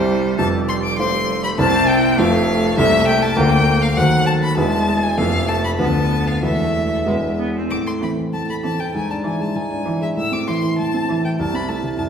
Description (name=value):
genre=quick classical-period movement for piano trio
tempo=99 BPM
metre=2/4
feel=rubato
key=A minor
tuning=A4 = 439 Hz
part: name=clear violin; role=melody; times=0.0-12.0 s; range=C5 to E6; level=-21 LUFS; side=left 3 dB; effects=none
part: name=rich cello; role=second line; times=0.0-11.9 s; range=E3 to C4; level=-23 LUFS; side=right 2 dB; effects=none
part: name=warm baby grand piano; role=accompaniment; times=0.0-12.1 s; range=E1 to C5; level=-18 LUFS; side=equal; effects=none
room=wet stone room reverb, RT60 1.4 s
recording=heard from further back in the room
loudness=-16 LUFS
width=side -7 dB against mid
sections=0.0-7.7 A section; 7.7-12.1 B section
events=none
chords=0.4 F; 1.6 C7; 2.2 F; 2.8 Am/C; 3.4 Bb/D; 4.0 D#dim7; 4.6 E; 5.2 F; 5.8 Bm7b5/D; 6.4 Esus4; 7.1 E; 7.7 Am; 8.9 E7/G#; 10.2 Am; 11.4 Am/C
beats=| 0.39 0.99 | 1.59 2.19 | 2.78 3.37 | 3.97 4.57 | 5.17 5.79 | 6.42 7.06 | 7.70 8.32 | 8.94 9.55 | 10.16 10.78 | 11.38 11.98